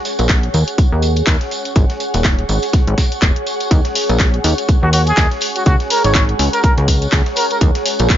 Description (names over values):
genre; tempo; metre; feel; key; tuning
piano house; 123 BPM; 4/4; swing 57% on 16ths; Eb minor; A4 = 443 Hz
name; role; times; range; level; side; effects
tambourine; percussion; 0.0-8.2 s; none; -27 LUFS; right 2 dB; none
granular cloud pad; texture; 0.0-8.2 s; Ab4 to Gb5; -22 LUFS; right 1 dB; built-in reverb, sidechain pumping
dusty soul sampler-style drum kit; drums; 0.1-8.2 s; hi-hat, snare drum; -29 LUFS; right 1 dB; none
plucky analog bass; bass; 0.2-8.2 s; Eb1 to Eb2; -16 LUFS; equal; sidechain pumping
house drum kit; drums; 0.2-8.2 s; handclaps, hi-hat; -20 LUFS; left 1 dB; none
electronic kick drum; drums; 0.3-8.2 s; none; -14 LUFS; equal; none
trumpet with plunger mute; melody; 4.8-7.6 s; Gb4 to Db5; -19 LUFS; equal; digital delay
room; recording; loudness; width
little or no reverb; nothing above 7.5 kHz; -12 LUFS; side -11 dB against mid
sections
0.0-8.2 A section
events
none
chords
0.0 Ebm7; 1.8 Ab5; 3.7 Ebm7; 5.4 Dbsus4; 7.6 Ebm7